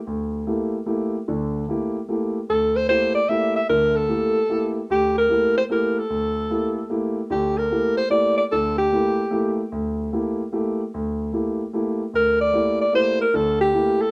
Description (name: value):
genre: jazz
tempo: 149 BPM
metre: 3/4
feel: swing 65% on 8ths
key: G dorian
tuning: A4 = 440 Hz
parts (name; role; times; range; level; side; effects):
- warm concert grand piano; accompaniment; 0.1-14.0 s; D2 to G4; -26 LUFS; equal; none
- breathy alto saxophone; melody; 2.5-9.5, 12.2-14.1 s; G4 to E5; -22 LUFS; equal; plate reverb
room: light reverb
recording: none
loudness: -22 LUFS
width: mono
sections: 0.0-14.1 A section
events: none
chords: 0.0 Gm69